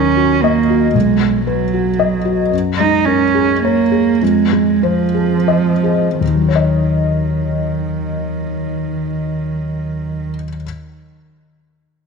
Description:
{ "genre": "neoclassical piano and strings", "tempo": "81-115 BPM", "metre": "3/4", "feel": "rubato", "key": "Eb minor", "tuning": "A4 = 440 Hz", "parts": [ { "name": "dark cello", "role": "second line", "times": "0.0-10.3 s", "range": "Eb3 to Eb4", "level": "-16 LUFS", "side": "right 9 dB", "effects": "none" }, { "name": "felt-muted upright piano", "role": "accompaniment", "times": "0.0-10.7 s", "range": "B1 to Eb5", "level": "-17 LUFS", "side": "left 9 dB", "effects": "none" } ], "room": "moderate plate reverb, RT60 2.5 s", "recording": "1960s-style stereo with parts hard left and right", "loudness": "-13 LUFS", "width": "side -5 dB against mid", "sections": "0.0-6.2 A section; 6.2-10.6 B section", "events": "slowing down 1.7-6.2", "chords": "0.0 Ebm7; 0.9 B; 2.5 Gbadd9; 4.2 Fm7; 6.2 Ebm7", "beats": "0.42 | 0.94 1.47 1.99 | 2.52 3.07 3.63 | 4.21 4.82 5.49 | 6.21 6.95 7.68 | 8.42 9.15 9.88" }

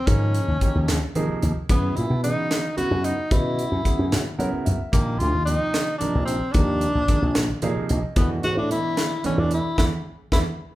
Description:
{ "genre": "electric jazz fusion", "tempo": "74 BPM (dotted quarters)", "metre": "6/8", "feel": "straight", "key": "unclear", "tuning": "A4 = 439 Hz", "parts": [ { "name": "breathy tenor saxophone", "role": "melody", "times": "0.0-10.4 s", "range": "Bb3 to Gb4", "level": "-26 LUFS", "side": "left 1 dB", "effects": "none" }, { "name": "warm grand piano", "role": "accompaniment", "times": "0.1-10.4 s", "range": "B2 to Gb5", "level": "-28 LUFS", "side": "right 3 dB", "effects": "none" }, { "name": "slap bass with an envelope filter", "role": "bass", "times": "0.1-10.4 s", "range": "Bb1 to Gb3", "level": "-24 LUFS", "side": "equal", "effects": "none" }, { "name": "crisp fusion drum kit", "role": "drums", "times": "0.1-10.4 s", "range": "hi-hat, kick drum, snare drum", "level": "-24 LUFS", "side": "equal", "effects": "none" } ], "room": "moderate large studio reverb, RT60 0.8 s", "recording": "band playing live in one room", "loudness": "-20 LUFS", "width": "side -16 dB against mid", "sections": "0.0-10.8 A section", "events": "grand piano fill 4.1-4.9, 7.4-8.2; band accent 9.8-10.8", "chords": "0.0 Eb9sus4; 1.7 Gb9sus4; 4.9 Bb9sus4; 8.2 E9sus4", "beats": "| 0.07 0.88 | 1.69 2.50 | 3.31 4.12 | 4.93 5.74 | 6.55 7.36 | 8.17 8.98 | 9.79" }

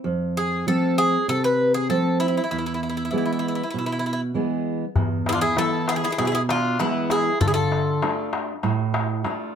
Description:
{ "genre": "greek folk, Greek bouzouki band", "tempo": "98 BPM", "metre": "4/4", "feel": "straight", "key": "E phrygian dominant", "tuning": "A4 = 440 Hz", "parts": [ { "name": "fingerpicked steel-string acoustic guitar", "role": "accompaniment", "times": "0.0-9.6 s", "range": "E2 to F4", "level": "-24 LUFS", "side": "right 2 dB", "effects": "none" }, { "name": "Greek bouzouki", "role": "melody", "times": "0.4-8.3 s", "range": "E4 to B4", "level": "-24 LUFS", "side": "equal", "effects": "none" }, { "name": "darbuka", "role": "percussion", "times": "5.0-9.4 s", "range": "none", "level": "-26 LUFS", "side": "left 3 dB", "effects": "none" }, { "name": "Greek bouzouki", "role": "second line", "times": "5.3-8.3 s", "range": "B3 to F4", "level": "-29 LUFS", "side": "left 7 dB", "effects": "none" } ], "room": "moderate studio reverb, RT60 0.6 s", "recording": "none", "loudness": "-20 LUFS", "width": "side -8 dB against mid", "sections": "0.0-5.0 A section; 5.0-9.6 A section", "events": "none", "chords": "0.0 F; 2.5 E; 7.4 Dm", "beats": "| 0.04 0.66 1.27 1.89 | 2.50 3.12 3.73 4.34 | 4.96 5.57 6.19 6.80 | 7.41 8.03 8.64 9.25" }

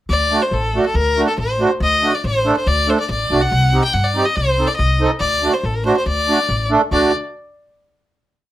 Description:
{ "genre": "klezmer", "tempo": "141 BPM", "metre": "2/4", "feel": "straight", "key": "D phrygian dominant", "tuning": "A4 = 440 Hz", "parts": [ { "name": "bright violin", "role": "melody", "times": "0.1-7.1 s", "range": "A4 to G5", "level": "-18 LUFS", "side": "left 2 dB", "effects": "none" }, { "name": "upright bass", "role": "bass", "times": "0.1-7.1 s", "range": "A1 to G2", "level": "-20 LUFS", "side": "left 1 dB", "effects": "none" }, { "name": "accordion", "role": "accompaniment", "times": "0.3-7.1 s", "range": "A3 to A4", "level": "-18 LUFS", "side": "right 3 dB", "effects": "light tremolo tuning" } ], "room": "light reverb", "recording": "none", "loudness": "-14 LUFS", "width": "side -14 dB against mid", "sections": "0.1-6.9 A section; 6.9-7.8 final chord", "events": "none", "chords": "0.1 D; 3.5 Cm; 5.2 D", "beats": "| 0.10 0.52 | 0.95 1.38 | 1.80 2.23 | 2.66 3.08 | 3.51 3.93 | 4.36 4.79 | 5.21 5.64 | 6.07 6.49 | 6.92" }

